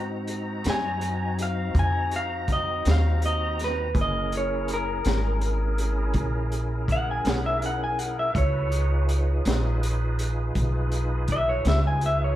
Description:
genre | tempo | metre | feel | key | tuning
slow blues | 54 BPM (dotted quarters) | 12/8 | straight | Db mixolydian | A4 = 440 Hz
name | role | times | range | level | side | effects
bright tonewheel organ | sustained chords | 0.0-12.4 s | C4 to Bb5 | -32 LUFS | equal | slow rotary speaker, chorus vibrato
upright bass | bass | 0.0-12.4 s | Gb1 to Ab2 | -25 LUFS | equal | none
crunchy breakbeat drum kit | drums | 0.3-12.2 s | hi-hat, kick drum, snare drum | -29 LUFS | equal | none
electric guitar through a small old amp | melody | 0.7-12.4 s | Bb4 to Ab5 | -28 LUFS | left 1 dB | none
room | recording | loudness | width
light reverb | band playing live in one room | -23 LUFS | side -13 dB against mid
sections
0.0-12.4 A section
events
clean electric guitar solo 0.0-12.4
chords
0.0 Ab7; 4.0 Gb7; 8.4 Db7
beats
0.66 1.76 2.85 | 3.95 5.05 6.15 7.25 | 8.36 9.46 10.56 11.66

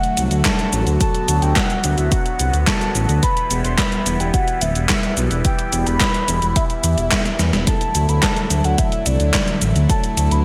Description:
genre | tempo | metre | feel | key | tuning
synthwave | 108 BPM | 4/4 | straight | unclear | A4 = 440 Hz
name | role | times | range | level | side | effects
soft octave-layered synth lead | melody | 0.0-10.4 s | D5 to C6 | -26 LUFS | equal | chorus, phaser, delay
phased analog pad | sustained chords | 0.0-10.4 s | D3 to F#4 | -28 LUFS | equal | phaser, chorus, sidechain pumping
gated 80s digital drum machine | drums | 0.0-10.4 s | cabasa, handclaps, hi-hat, snare drum | -24 LUFS | equal | gated reverb, gated reverb snare
dark detuned saw bass | bass | 0.2-10.4 s | D1 to E2 | -21 LUFS | equal | sidechain pumping
electronic kick drum | drums | 0.5-10.0 s | none | -23 LUFS | equal | none
room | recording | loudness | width
moderate lush hall reverb, RT60 1.8 s | bright 1980s-style digital production | -18 LUFS | mono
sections
0.0-10.4 A section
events
drum fill 7.3-7.7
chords
0.0 D; 3.2 Em; 7.7 D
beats
0.45 | 1.01 1.56 2.12 2.67 | 3.23 3.78 4.34 4.89 | 5.45 6.01 6.56 7.12 | 7.67 8.23 8.78 9.34 | 9.89

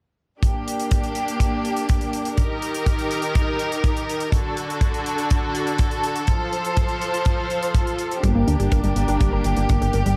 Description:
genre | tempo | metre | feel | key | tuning
italo disco | 123 BPM | 4/4 | straight | G minor | A4 = 441 Hz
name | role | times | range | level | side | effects
rich studio string section | sustained chords | 0.4-10.2 s | D3 to C5 | -26 LUFS | equal | none
hi-hat | drums | 0.4-10.2 s | none | -38 LUFS | equal | none
kick drum | drums | 0.4-9.8 s | none | -23 LUFS | equal | none
unison pluck | arpeggios | 8.2-10.1 s | G3 to Bb4 | -29 LUFS | equal | cassette tape, tape echo
mellow synth brass | stabs | 8.2-10.2 s | G2 to Bb4 | -29 LUFS | equal | chorus, tape echo
fat analog bass | bass | 8.2-10.2 s | G1 to D2 | -24 LUFS | equal | none
room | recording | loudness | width
light reverb, studio reverb | none | -22 LUFS | mono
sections
0.4-10.2 A section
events
none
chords
0.4 Gm; 2.4 Eb; 4.3 D; 6.3 F; 8.2 Gm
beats
| 0.43 0.91 1.40 1.89 | 2.38 2.87 3.35 3.84 | 4.33 4.82 5.30 5.79 | 6.28 6.77 7.26 7.74 | 8.23 8.72 9.21 9.70

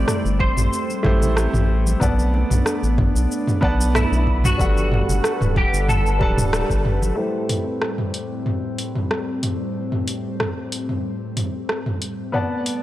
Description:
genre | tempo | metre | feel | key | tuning
sunset chillout | 93 BPM | 4/4 | straight | A dorian | A4 = 438 Hz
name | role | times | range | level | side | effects
semi-hollow electric guitar | melody | 0.0-6.8 s | E4 to D5 | -26 LUFS | equal | ensemble chorus, analog delay
clear grand piano | accompaniment | 0.0-12.8 s | G3 to A5 | -26 LUFS | equal | auto-pan, low-pass filter, analog delay
airy breathy pad | sustained chords | 0.0-12.8 s | A2 to F#5 | -27 LUFS | equal | chorus, vintage 12-bit sampler grit
round analog bass | bass | 0.0-7.1 s | D1 to B1 | -20 LUFS | equal | tube saturation
deep house drum kit | drums | 0.1-12.8 s | cabasa, hi-hat, rim click, toms | -24 LUFS | equal | overdrive
electronic kick drum | drums | 0.4-6.8 s | none | -22 LUFS | equal | overdrive
bongos and congas | percussion | 0.4-7.1 s | none | -31 LUFS | right 2 dB | none
room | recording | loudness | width
light reverb | dry, gritty hardware recording | -18 LUFS | side -14 dB against mid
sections
0.0-7.2 A section; 7.2-12.8 B section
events
band accent 6.5-6.9; filter sweep on grand piano 7.2-12.8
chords
0.0 Am7; 2.0 Bm7; 4.6 Gmaj9; 7.2 Am7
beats
0.08 0.72 1.37 | 2.01 2.66 3.30 3.95 | 4.59 5.24 5.88 6.53 | 7.17 7.82 8.47 9.11 | 9.76 10.40 11.05 11.69 | 12.34

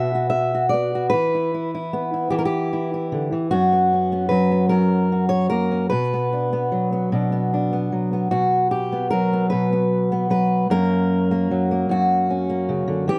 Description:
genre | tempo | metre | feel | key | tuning
folk, solo fingerstyle acoustic guitar | 50 BPM (dotted quarters) | 6/8 | straight | B harmonic minor | A4 = 439 Hz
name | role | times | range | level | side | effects
fingerpicked steel-string acoustic guitar | solo | 0.0-13.2 s | F#2 to E5 | -21 LUFS | equal | none
room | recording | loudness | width
light reverb | dark, warm production | -21 LUFS | mono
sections
0.0-8.3 A section; 8.3-13.2 A section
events
none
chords
0.0 B5; 1.1 Em; 3.5 F#sus4; 4.7 F#; 5.9 Bm; 8.3 B5; 10.7 F#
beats
| 1.13 2.32 | 3.51 4.70 | 5.91 7.11 | 8.31 9.51 | 10.71 11.90 | 13.10

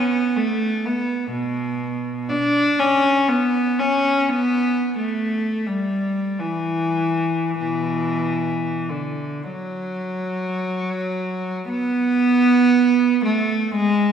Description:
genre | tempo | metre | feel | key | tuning
classical, free, expressive piece for unaccompanied cello | 30-63 BPM | 3/4 | rubato | B minor | A4 = 438 Hz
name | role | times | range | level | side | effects
rich cello | solo | 0.0-14.1 s | B2 to D4 | -18 LUFS | right 1 dB | none
room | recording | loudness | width
wet concert hall reverb, RT60 2.1 s | recorded in a church or concert hall | -19 LUFS | side -8 dB against mid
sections
0.0-11.7 A section; 11.7-14.1 B section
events
none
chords
none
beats
0.34 | 1.31 2.29 3.29 | 4.30 5.32 6.39 | 7.59 8.88 10.13 | 11.68 12.74 13.74

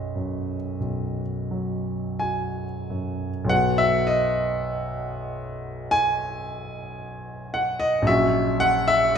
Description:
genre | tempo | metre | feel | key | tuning
classical, romantic nocturne for solo piano | 40-58 BPM | 4/4 | rubato | B major | A4 = 440 Hz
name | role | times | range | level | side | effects
warm concert grand piano | solo | 0.0-9.2 s | A#1 to G#5 | -22 LUFS | equal | none
room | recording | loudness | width
moderate concert hall reverb, RT60 1.8 s | minimal, uncompressed stereo recording | -22 LUFS | side -7 dB against mid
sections
0.0-3.5 A section; 3.5-9.2 A section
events
none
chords
0.0 B; 8.1 F#/A#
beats
0.81 2.22 | 3.51 4.66 5.94 7.04 | 8.09 9.17

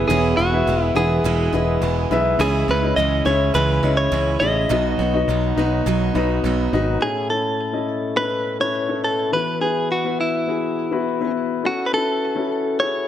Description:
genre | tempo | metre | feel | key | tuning
piano-driven pop | 104 BPM | 4/4 | straight | E major | A4 = 440 Hz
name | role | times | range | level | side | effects
direct-recorded clean electric guitar | melody | 0.0-13.1 s | E4 to D#5 | -22 LUFS | right 1 dB | vibrato effect
dark baby grand piano | accompaniment | 0.0-13.1 s | A2 to F#5 | -22 LUFS | left 5 dB | none
tonewheel organ | sustained chords | 0.0-7.0 s | C#3 to G#4 | -30 LUFS | right 1 dB | none
picked steel-string acoustic guitar | riff | 0.0-7.0 s | E2 to F#4 | -25 LUFS | right 9 dB | none
modern bright picked electric bass | bass | 0.0-7.0 s | E1 to C#2 | -22 LUFS | right 1 dB | none
room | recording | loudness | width
light reverb, small room reverb | none | -18 LUFS | side -10 dB against mid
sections
0.0-7.0 A section; 7.0-13.1 B section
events
none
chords
0.0 E; 2.4 C#m; 4.7 B; 7.0 A; 9.3 Esus2; 11.6 F#m7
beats
| 0.09 0.67 1.24 1.82 | 2.40 2.97 3.55 4.13 | 4.70 5.28 5.86 6.44 | 7.01 7.59 8.17 8.75 | 9.32 9.90 10.48 11.06 | 11.64 12.21 12.79

